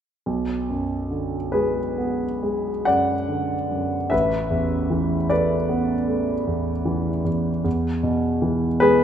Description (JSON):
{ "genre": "classical, impressionist solo piano", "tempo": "44-52 BPM (dotted quarters)", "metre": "9/8", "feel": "rubato", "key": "B dorian", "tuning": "A4 = 440 Hz", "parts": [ { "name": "warm concert grand piano", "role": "solo", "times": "0.3-9.0 s", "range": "A1 to F#5", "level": "-20 LUFS", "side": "equal", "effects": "none" } ], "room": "moderate concert hall reverb, RT60 2.2 s", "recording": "minimal, uncompressed stereo recording", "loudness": "-20 LUFS", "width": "side -9 dB against mid", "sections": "0.3-9.0 A section", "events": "none", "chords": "0.3 Bm6; 4.1 Asus24; 7.7 E" }